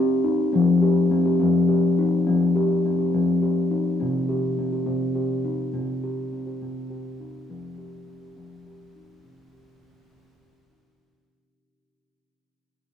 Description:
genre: world meditative, meditative tuned percussion.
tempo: 69 BPM (dotted quarters).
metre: 6/8.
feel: straight.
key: C minor.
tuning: A4 = 440 Hz.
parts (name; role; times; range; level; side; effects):
steel tongue drum; solo; 0.0-11.0 s; C3 to G4; -21 LUFS; left 2 dB; cassette tape, tape echo.
room: wet small room reverb, RT60 0.6 s.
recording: home recording on cassette.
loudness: -20 LUFS.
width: side -8 dB against mid.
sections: 0.0-11.0 A section.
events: fade-out 0.0-11.0.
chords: 0.0 Cm (rootless); 0.5 F5; 4.0 Cm; 7.5 F5; 9.2 Cm.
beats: | 0.54 1.40 | 2.27 3.14 | 4.01 4.88 | 5.75 6.62 | 7.49 8.36 | 9.23 10.10.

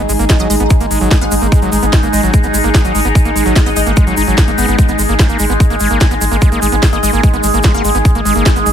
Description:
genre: psychedelic trance.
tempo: 147 BPM.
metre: 4/4.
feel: straight.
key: unclear.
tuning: A4 = 440 Hz.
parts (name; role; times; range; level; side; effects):
overtone-sweeping drone; sustained chords; 0.0-8.7 s; G#3 to G#4; -17 LUFS; equal; chorus, built-in reverb, phaser, sidechain pumping.
overdriven acid bass; riff; 0.0-8.7 s; F#3 to D#4; -19 LUFS; equal; distortion, auto-pan, sidechain pumping, ping-pong delay.
round analog bass; bass; 0.0-8.7 s; G#1; -17 LUFS; equal; none.
airy breathy pad; texture; 0.0-8.7 s; D#4 to G#5; -21 LUFS; equal; chorus, sidechain pumping.
drum and bass drum kit; drums; 0.1-8.7 s; hi-hat, snare drum; -20 LUFS; equal; none.
egg shaker; percussion; 0.1-8.7 s; none; -24 LUFS; right 4 dB; none.
electronic kick drum; drums; 0.3-8.5 s; none; -10 LUFS; equal; none.
resonant blip pluck; second line; 0.4-3.8, 6.9-8.3 s; D#5 to F#5; -25 LUFS; left 6 dB; phaser, sidechain pumping, high-pass filter, ping-pong delay.
room: little or no reverb.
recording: none.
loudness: -9 LUFS.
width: side -9 dB against mid.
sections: 0.0-8.7 A section.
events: none.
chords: 0.0 G#5.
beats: 0.29 0.70 1.11 | 1.52 1.93 2.34 2.74 | 3.15 3.56 3.97 4.38 | 4.79 5.19 5.60 6.01 | 6.42 6.83 7.23 7.64 | 8.05 8.46.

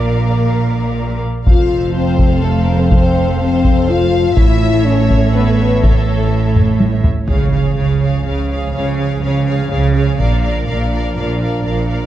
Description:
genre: cinematic, epic orchestral film score.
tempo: 124 BPM.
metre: 3/4.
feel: straight.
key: unclear.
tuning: A4 = 440 Hz.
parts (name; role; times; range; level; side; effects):
rich symphonic violin section; melody; 0.0-12.1 s; E5 to F5; -28 LUFS; left 3 dB; none.
warm symphonic violin section; second line; 0.0-12.1 s; A4 to F5; -27 LUFS; left 2 dB; none.
warm symphonic viola section; accompaniment; 0.0-12.1 s; Ab4 to D5; -26 LUFS; right 2 dB; none.
mellow French horn section; sustained chords; 0.0-12.1 s; F3 to F4; -19 LUFS; left 4 dB; none.
rich symphonic cello section; bass; 0.0-12.1 s; F2 to Db3; -19 LUFS; right 3 dB; none.
warm studio double bass section; bass; 0.0-12.1 s; F1 to Db2; -17 LUFS; right 2 dB; none.
solo taiko drums; drums; 1.5-11.1 s; none; -15 LUFS; equal; none.
impact; sound effects; 7.3-8.7 s; none; -22 LUFS; equal; none.
room: moderate scoring stage reverb, RT60 2.0 s.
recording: dark, warm production.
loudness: -12 LUFS.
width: side -12 dB against mid.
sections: 0.0-7.3 A section; 7.3-12.1 B section.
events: drum fill 6.6-7.3; impact 7.3-8.7.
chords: 0.0 Bb; 1.5 F; 4.4 A; 7.3 Db; 10.2 Bb.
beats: | 0.01 0.50 0.98 | 1.47 1.95 2.43 | 2.92 3.40 3.89 | 4.37 4.86 5.34 | 5.83 6.31 6.80 | 7.28 7.77 8.25 | 8.74 9.22 9.71 | 10.19 10.68 11.16 | 11.65.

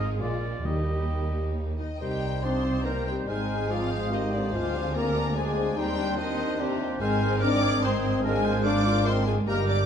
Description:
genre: quick classical-period movement for symphony orchestra.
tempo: 144 BPM.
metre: 3/4.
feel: rubato.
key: C minor.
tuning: A4 = 439 Hz.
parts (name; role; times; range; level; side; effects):
rich chamber violin section; melody; 0.0-9.9 s; Eb4 to D6; -35 LUFS; left 4 dB; none.
clear oboe; second line; 0.0-9.9 s; G4 to Eb5; -38 LUFS; right 1 dB; none.
rich chamber violin section; second line; 0.0-9.9 s; G3 to Ab4; -35 LUFS; left 3 dB; none.
rich studio viola section; accompaniment; 0.0-9.9 s; C4 to D5; -33 LUFS; right 1 dB; none.
rich chamber double bass section; bass; 0.0-9.9 s; G1 to Eb2; -30 LUFS; right 2 dB; none.
warm chamber cello section; bass; 0.0-9.9 s; D2 to C3; -32 LUFS; right 2 dB; none.
warm French horn section; sustained chords; 0.2-9.8 s; C3 to F4; -31 LUFS; left 4 dB; none.
timpani; percussion; 0.6-1.3 s; Eb3; -35 LUFS; left 1 dB; none.
warm clarinet; second line; 2.0-9.9 s; C4 to Ab4; -34 LUFS; left 2 dB; none.
mellow bassoon; accompaniment; 2.0-9.9 s; Eb3 to Bb3; -36 LUFS; right 2 dB; none.
hollow small flute group; second line; 2.4-9.9 s; C6 to G6; -38 LUFS; right 4 dB; none.
room: wet recital hall reverb, RT60 1.4 s.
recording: dark, warm production.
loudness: -24 LUFS.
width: side -8 dB against mid.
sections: 0.0-2.0 A section; 2.0-9.9 B section.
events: none.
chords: 0.2 Bb7; 0.6 Eb; 2.0 Cm; 3.3 Ab; 4.5 Dm7b5; 5.8 Cm/Eb; 7.0 Ab; 8.2 Bb7/Ab.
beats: 0.21 | 0.65 1.10 1.56 | 2.01 2.44 2.86 | 3.28 3.70 4.12 | 4.54 4.95 5.37 | 5.78 6.18 6.60 | 7.01 7.42 7.83 | 8.24 8.65 9.06 | 9.47.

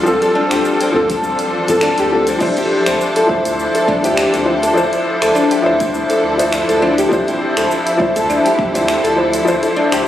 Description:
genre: organic downtempo.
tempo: 102 BPM.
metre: 4/4.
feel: swing 55% on 16ths.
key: D minor.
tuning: A4 = 440 Hz.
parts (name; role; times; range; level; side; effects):
felt-muted upright piano; accompaniment; 0.0-10.1 s; F3 to C5; -16 LUFS; left 1 dB; sidechain pumping, ping-pong delay.
rich symphonic string section; sustained chords; 0.0-10.1 s; F3 to C5; -20 LUFS; right 1 dB; sidechain pumping.
bronze singing bowl; texture; 0.0-2.4 s; none; barely audible; none; none.
round analog bass; bass; 0.1-10.0 s; A1 to D2; -31 LUFS; right 1 dB; sidechain pumping.
deep house drum kit; drums; 0.1-10.0 s; cabasa, crash cymbal, finger snaps, hi-hat; -25 LUFS; equal; small room reverb.
oud; arpeggios; 0.2-10.1 s; C4 to A4; -18 LUFS; left 1 dB; ping-pong delay.
udu; percussion; 0.9-8.7 s; none; -40 LUFS; left 1 dB; none.
electronic kick drum; drums; 1.1-8.7 s; none; -23 LUFS; equal; small room reverb.
room: moderate lush hall reverb, RT60 1.9 s.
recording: recorded on a phone in the room, studio reverb.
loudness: -12 LUFS.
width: side -12 dB against mid.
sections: 0.0-2.4 A section; 2.4-10.1 B section.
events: none.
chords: 0.0 G9sus4/D; 2.4 Dm9.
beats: | 0.06 0.65 1.23 1.82 | 2.41 3.00 3.59 4.17 | 4.76 5.35 5.94 6.53 | 7.12 7.71 8.29 8.88 | 9.47 10.06.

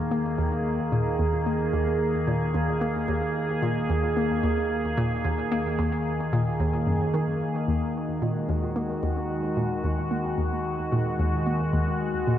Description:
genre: ambient, sequencer-driven space music.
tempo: 111 BPM.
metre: 4/4.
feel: straight.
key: Eb minor.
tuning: A4 = 440 Hz.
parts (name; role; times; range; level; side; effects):
evolving wavetable pad; sustained chords; 0.0-12.4 s; Eb3 to Ab4; -26 LUFS; equal; chorus, built-in reverb.
analog drone; bass; 0.2-12.4 s; Eb2; -36 LUFS; left 1 dB; chorus.
hollow square pluck; riff; 0.1-12.4 s; Eb2 to Bb3; -28 LUFS; equal; chorus, phaser, tape echo.
room: wet lush hall reverb, RT60 2.7 s.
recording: dreamy mix soaked in reverb.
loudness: -24 LUFS.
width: side -11 dB against mid.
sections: 0.0-12.4 A section.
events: none.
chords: 0.0 Ebm.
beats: 0.11 0.65 | 1.19 1.73 2.27 2.81 | 3.35 3.90 4.44 4.98 | 5.52 6.06 6.60 7.14 | 7.68 8.22 8.76 9.30 | 9.84 10.38 10.92 11.46 | 12.00.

